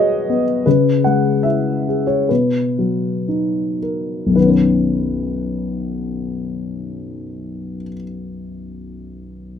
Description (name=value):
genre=classical, lyrical solo piano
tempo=54-83 BPM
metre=4/4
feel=rubato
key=B major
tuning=A4 = 440 Hz
part: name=dark baby grand piano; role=solo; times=0.0-9.6 s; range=B1 to F#5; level=-17 LUFS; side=left 2 dB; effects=none
room=light reverb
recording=close, detailed microphones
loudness=-16 LUFS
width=side -8 dB against mid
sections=0.0-4.4 A section; 4.4-8.6 B section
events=slowing down 0.0-4.4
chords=0.0 G#m7/B; 0.7 C#m; 2.3 Bmaj7; 4.4 Badd9